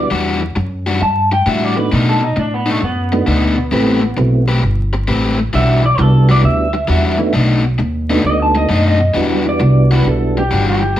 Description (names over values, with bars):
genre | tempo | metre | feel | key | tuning
blues | 133 BPM | 4/4 | swing 68% on 8ths | E minor | A4 = 440 Hz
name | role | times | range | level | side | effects
electric guitar through a small old amp | melody | 0.0-11.0 s | A3 to A5 | -18 LUFS | equal | vibrato effect
tonewheel organ | accompaniment | 0.0-10.4 s | G3 to G4 | -18 LUFS | right 3 dB | slow rotary speaker, overdrive
upright bass | bass | 0.0-11.0 s | G1 to B2 | -15 LUFS | equal | none
overdriven electric guitar | riff | 0.1-11.0 s | B2 to B4 | -18 LUFS | left 3 dB | none
room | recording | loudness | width
moderate studio reverb, RT60 0.8 s | band playing live in one room, vinyl crackle | -12 LUFS | side -12 dB against mid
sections
0.0-9.2 A section; 9.2-11.0 B section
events
clean electric guitar solo 0.0-9.2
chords
0.0 Em9; 1.9 B7#9; 3.7 Am9; 5.5 Em9; 7.3 B7#9; 9.2 Em9